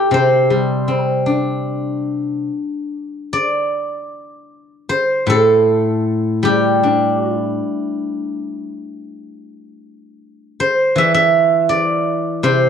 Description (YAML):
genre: chinese traditional, Chinese solo plucked strings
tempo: 70-82 BPM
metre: 4/4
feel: rubato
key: C gong mode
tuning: A4 = 440 Hz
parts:
  - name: steel-string zither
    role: solo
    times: 0.0-12.7 s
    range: A2 to E5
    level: -15 LUFS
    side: equal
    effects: none
room: little or no reverb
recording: dry, close 1970s-style studio recording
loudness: -14 LUFS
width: side -7 dB against mid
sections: 0.0-3.3 A section; 3.3-12.7 B section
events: none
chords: none